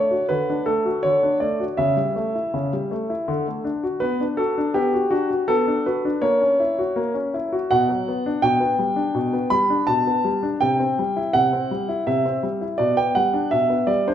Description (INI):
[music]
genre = classical-period piano sonatina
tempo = 82 BPM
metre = 3/4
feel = rubato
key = D major, G major from 8.4 s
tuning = A4 = 444 Hz
[part]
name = clear concert grand piano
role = solo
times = 0.0-14.1 s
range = B2 to B5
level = -19 LUFS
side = equal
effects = none
[sound]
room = wet recital hall reverb, RT60 1.7 s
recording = minimal, uncompressed stereo recording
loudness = -19 LUFS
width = side -10 dB against mid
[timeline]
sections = 0.0-14.1 A section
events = none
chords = 0.0 D; 1.8 A7/C#; 3.3 D; 4.0 Bm; 6.2 F#7/A#; 7.7 Bm; 8.4 G/B; 10.6 C; 12.8 G/B